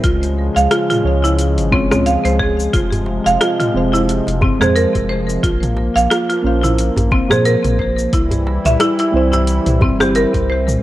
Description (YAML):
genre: organic downtempo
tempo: 89 BPM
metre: 4/4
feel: swing 56% on 16ths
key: unclear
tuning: A4 = 440 Hz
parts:
  - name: muted felt-like synth keys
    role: accompaniment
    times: 0.0-10.8 s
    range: F3 to Db5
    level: -20 LUFS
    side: right 3 dB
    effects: chorus, sidechain pumping, ping-pong delay
  - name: warm analog pad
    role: sustained chords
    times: 0.0-10.8 s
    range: C3 to E4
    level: -22 LUFS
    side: left 2 dB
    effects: chorus, sidechain pumping
  - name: buzzing marimba with hard mallets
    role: arpeggios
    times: 0.0-10.8 s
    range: C4 to F5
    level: -18 LUFS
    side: right 1 dB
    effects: ping-pong delay
  - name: round analog bass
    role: bass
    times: 0.0-10.8 s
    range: F1 to Bb2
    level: -18 LUFS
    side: equal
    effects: tube saturation, sidechain pumping
  - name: deep house drum kit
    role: drums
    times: 0.0-10.8 s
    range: cabasa, hi-hat, rim click, toms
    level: -22 LUFS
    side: equal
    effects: overdrive
  - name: electronic kick drum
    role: drums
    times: 0.0-10.5 s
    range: none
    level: -19 LUFS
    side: equal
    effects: none
  - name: djembe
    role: percussion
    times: 2.9-10.5 s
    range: none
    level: -23 LUFS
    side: right 1 dB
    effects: none
room: light reverb, digital ambience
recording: worn, warbling old tape, cassette tape, warbly pitch drift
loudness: -13 LUFS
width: side -15 dB against mid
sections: 0.0-10.8 A section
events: none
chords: 0.0 Db; 2.7 Fm; 5.4 Bbmadd9; 8.1 C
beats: | 0.04 0.71 1.39 2.06 | 2.73 3.41 4.08 4.76 | 5.43 6.11 6.78 7.45 | 8.13 8.80 9.48 10.15